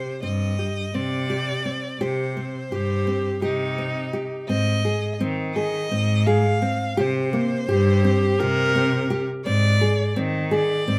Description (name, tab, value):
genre	contemporary instrumental, chamber music in an uneven meter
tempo	169 BPM (eighths)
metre	7/8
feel	straight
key	C minor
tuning	A4 = 442 Hz
part	warm violin	melody	0.0-11.0 s	C5 to F5	-31 LUFS	equal	none
part	nylon-string guitar	arpeggios	0.0-11.0 s	Bb3 to Ab4	-28 LUFS	equal	none
part	clear cello	bass	0.0-11.0 s	G2 to Eb3	-26 LUFS	equal	none
part	rich viola	second line	2.7-9.3 s	Eb4 to Bb4	-27 LUFS	equal	none
room	moderate spring reverb, RT60 1.1 s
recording	heard from further back in the room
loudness	-23 LUFS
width	mono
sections	0.0-4.5 A section; 4.5-11.0 B section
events	none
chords	0.0 Cm; 4.5 Ab6; 7.0 C5; 9.5 Ab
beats	0.23 0.59 0.94 1.30 1.65 | 2.01 2.36 2.72 3.07 3.43 3.78 4.14 | 4.49 4.84 5.20 5.55 5.91 6.26 6.62 | 6.97 7.33 7.68 8.04 8.39 8.75 9.10 | 9.46 9.81 10.16 10.52 10.87